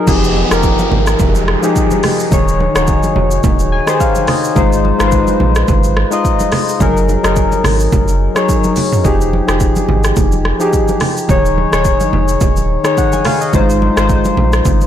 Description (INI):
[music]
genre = afrobeats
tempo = 107 BPM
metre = 4/4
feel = swing 55% on 16ths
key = unclear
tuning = A4 = 436 Hz
[part]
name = soft electric-piano-like synth keys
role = accompaniment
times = 0.0-14.9 s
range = Eb3 to Ab5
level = -14 LUFS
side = left 3 dB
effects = chorus
[part]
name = warm sub bass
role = bass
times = 0.1-14.9 s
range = Eb1 to Bb1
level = -16 LUFS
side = right 1 dB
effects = none
[part]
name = deep house drum kit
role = drums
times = 0.1-14.9 s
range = crash cymbal, hi-hat, kick drum, rim click, shaker, toms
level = -16 LUFS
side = right 1 dB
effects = soft clipping on snare
[part]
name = congas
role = percussion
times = 0.1-14.9 s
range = none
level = -21 LUFS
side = right 3 dB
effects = none
[part]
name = downlifter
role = sound effects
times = 0.1-4.6 s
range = none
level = -23 LUFS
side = right 2 dB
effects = none
[sound]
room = little or no reverb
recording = blown-out, overdriven recording, overdrive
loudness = -10 LUFS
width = side -10 dB against mid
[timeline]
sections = 0.1-14.9 A section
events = synth keys fill 3.4-4.6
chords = 0.1 Fm9; 2.3 Eb7sus4; 4.6 Ab6; 6.8 Gb69; 9.1 Fm9; 11.3 Eb7sus4; 13.5 Ab6